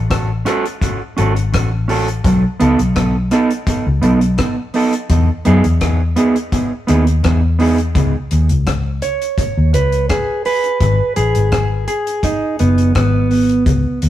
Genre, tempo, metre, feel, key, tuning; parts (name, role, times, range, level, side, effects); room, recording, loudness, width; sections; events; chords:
roots reggae; 84 BPM; 4/4; straight; A4 = 440 Hz
vintage muted fingered electric bass; bass; 0.0-14.1 s; F#1 to F#2; -15 LUFS; left 1 dB
deep reggae drum kit; drums; 0.1-14.1 s; hi-hat, kick drum, rim click; -21 LUFS; left 1 dB
mellow electric guitar; accompaniment; 0.5-13.6 s; B3 to C#5; -16 LUFS; right 3 dB; tape echo
moderate stone room reverb, RT60 1.0 s; rough rehearsal-room recording; -13 LUFS; side -13 dB against mid
0.0-8.0 A section; 8.0-14.1 B section
clean electric guitar solo 8.0-14.1
0.0 A6; 2.2 B7; 5.1 Emaj7; 8.0 G#madd11/C# (rootless); 10.8 G#m